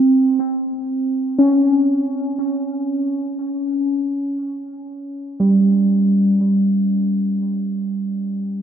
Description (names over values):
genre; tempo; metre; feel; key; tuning
ambient; free time; none; none; unclear; A4 = 443 Hz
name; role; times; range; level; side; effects
muted felt-like synth keys; solo; 0.0-8.6 s; G3 to Db4; -16 LUFS; right 1 dB; chorus, analog delay
room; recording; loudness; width
wet plate reverb, RT60 3.2 s; dreamy mix soaked in reverb; -16 LUFS; side -9 dB against mid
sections
0.0-8.6 A section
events
none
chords
none